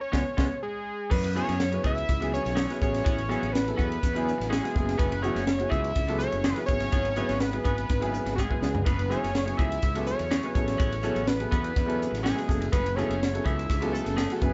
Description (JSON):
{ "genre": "electric jazz fusion", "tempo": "124 BPM", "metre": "4/4", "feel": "straight", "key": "F# minor", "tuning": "A4 = 436 Hz", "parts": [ { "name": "fat analog lead", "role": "melody", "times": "0.0-14.5 s", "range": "Ab4 to E5", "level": "-34 LUFS", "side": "equal", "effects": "chorus" }, { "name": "clear grand piano", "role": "accompaniment", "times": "0.1-14.5 s", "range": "C#3 to B4", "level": "-34 LUFS", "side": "equal", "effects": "none" }, { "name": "clean electric guitar", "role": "stabs", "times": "0.1-14.4 s", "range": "E3 to G#4", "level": "-41 LUFS", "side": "equal", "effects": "none" }, { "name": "fretless electric bass", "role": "bass", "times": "0.1-14.5 s", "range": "F#1 to F#2", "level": "-34 LUFS", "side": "equal", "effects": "none" }, { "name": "crisp fusion drum kit", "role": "drums", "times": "0.1-14.5 s", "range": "crash cymbal, hi-hat, kick drum, ride cymbal, snare drum, toms", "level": "-31 LUFS", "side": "equal", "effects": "none" } ], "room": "light reverb", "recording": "band playing live in one room, nothing above 7.8 kHz", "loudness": "-27 LUFS", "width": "mono", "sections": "0.0-1.1 A section; 1.1-14.5 B section", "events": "band accent 0.0-1.1; drum fill 0.1-1.1, 8.4-8.9; grand piano fill 0.4-1.1", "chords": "0.1 Db7(no3); 1.1 F#m9; 2.8 A69; 4.7 F#m9; 6.7 C#7sus4/G#; 8.9 F#m9; 10.6 A69; 12.5 F#m9" }